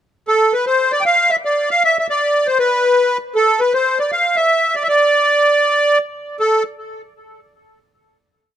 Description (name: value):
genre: celtic folk, Celtic hornpipe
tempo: 157 BPM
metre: 4/4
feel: swing 65% on 8ths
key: D dorian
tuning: A4 = 440 Hz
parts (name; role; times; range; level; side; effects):
- accordion; solo; 0.3-6.6 s; A4 to G5; -13 LUFS; equal; light tremolo tuning, tape echo
room: moderate studio ambience, RT60 0.5 s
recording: close, detailed microphones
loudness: -13 LUFS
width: side -10 dB against mid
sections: 0.3-6.4 A section; 6.4-7.9 final note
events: none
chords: none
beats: | 0.27 0.66 1.04 1.42 | 1.81 2.19 2.57 2.96 | 3.34 3.72 4.10 4.49 | 4.87 5.25 5.63 6.01 | 6.40